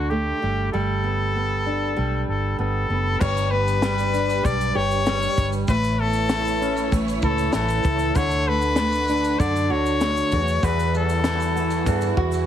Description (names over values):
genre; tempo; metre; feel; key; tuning
acoustic pop; 97 BPM; 4/4; straight; unclear; A4 = 442 Hz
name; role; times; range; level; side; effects
bright trumpet; melody; 0.0-12.1 s; F#4 to D5; -24 LUFS; left 3 dB; none
nylon-string guitar; accompaniment; 0.0-12.5 s; E2 to G4; -25 LUFS; right 1 dB; none
vintage muted fingered electric bass; bass; 0.0-12.4 s; F#1 to G2; -25 LUFS; equal; none
rich studio string section; sustained chords; 3.2-12.5 s; D3 to C#5; -33 LUFS; right 2 dB; none
compact cocktail drum kit; drums; 3.2-12.5 s; crash cymbal, kick drum, shaker, snare drum; -27 LUFS; equal; none
tube shaker; percussion; 3.2-12.5 s; none; -44 LUFS; right 5 dB; none
room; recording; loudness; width
light reverb; heavily compressed radio sound, multiband compression; -19 LUFS; side -10 dB against mid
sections
0.0-3.2 A section; 3.2-12.5 B section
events
none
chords
0.4 Gadd9; 3.2 G; 5.7 Aadd9; 8.2 D; 10.3 Emadd9